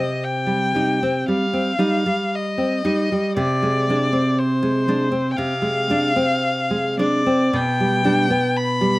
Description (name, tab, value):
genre	romantic duo for violin and classical guitar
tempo	52-61 BPM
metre	4/4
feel	rubato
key	C minor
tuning	A4 = 440 Hz
part	warm violin	melody	0.0-9.0 s	C5 to B5	-22 LUFS	left 2 dB	none
part	nylon-string guitar	accompaniment	0.0-9.0 s	B2 to Eb4	-19 LUFS	equal	slapback echo
room	little or no reverb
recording	recorded outdoors, with no room sound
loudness	-17 LUFS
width	side -19 dB against mid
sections	0.0-9.0 A section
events	none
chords	0.0 Cm; 3.4 Dm7b5/C; 7.5 G/B